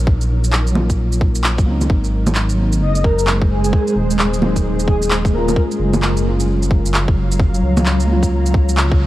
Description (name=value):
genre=future garage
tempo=131 BPM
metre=4/4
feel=swing 63% on 16ths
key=unclear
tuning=A4 = 439 Hz
part: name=muted felt-like synth keys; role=accompaniment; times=0.0-9.0 s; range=Gb3 to F4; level=-24 LUFS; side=equal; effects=chorus, sidechain pumping, low-pass filter, tape echo
part: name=granular cloud pad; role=sustained chords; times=0.0-9.1 s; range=Gb3 to Bb5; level=-23 LUFS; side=equal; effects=built-in reverb, sidechain pumping
part: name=dark detuned saw bass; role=bass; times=0.0-9.1 s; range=Eb1 to Db2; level=-17 LUFS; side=equal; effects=sidechain pumping
part: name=electronic kick drum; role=drums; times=0.1-9.0 s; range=none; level=-15 LUFS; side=equal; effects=studio reverb
part: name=electronic shaker, handclaps and bongos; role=drums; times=0.2-8.9 s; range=none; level=-21 LUFS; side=right 1 dB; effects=overdrive, studio reverb
part: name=breathy flute-like synth lead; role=melody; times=2.8-5.6 s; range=Ab4 to Eb5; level=-24 LUFS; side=left 2 dB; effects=ensemble chorus, analog delay
room=light reverb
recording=vinyl crackle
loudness=-14 LUFS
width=side -15 dB against mid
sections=0.0-9.1 A section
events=band accent 8.8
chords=0.0 Ebm7; 1.9 Ab7; 5.6 Gbmaj7